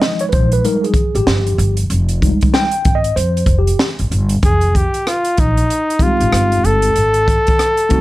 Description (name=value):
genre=hip hop, jazz-hop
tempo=95 BPM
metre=4/4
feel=swing 62% on 16ths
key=F minor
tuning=A4 = 441 Hz
part: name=mellow tine electric piano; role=accompaniment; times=0.0-8.0 s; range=F3 to G5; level=-18 LUFS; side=equal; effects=medium stereo tremolo
part: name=open jazz drum kit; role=drums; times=0.0-8.0 s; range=hi-hat, kick drum, rim click, snare drum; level=-17 LUFS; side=equal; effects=none
part: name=upright bass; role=bass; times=0.3-8.0 s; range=F1 to F2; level=-16 LUFS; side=equal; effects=none
part: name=mellow flugelhorn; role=melody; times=4.4-8.0 s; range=Eb4 to A4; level=-15 LUFS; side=left 1 dB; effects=none
room=small room ambience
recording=dry, gritty hardware recording, vinyl crackle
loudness=-12 LUFS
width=side -17 dB against mid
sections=0.0-4.4 A section; 4.4-8.0 B section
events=tine electric piano solo 0.0-4.4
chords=0.0 Fm9; 7.0 Ab(b9)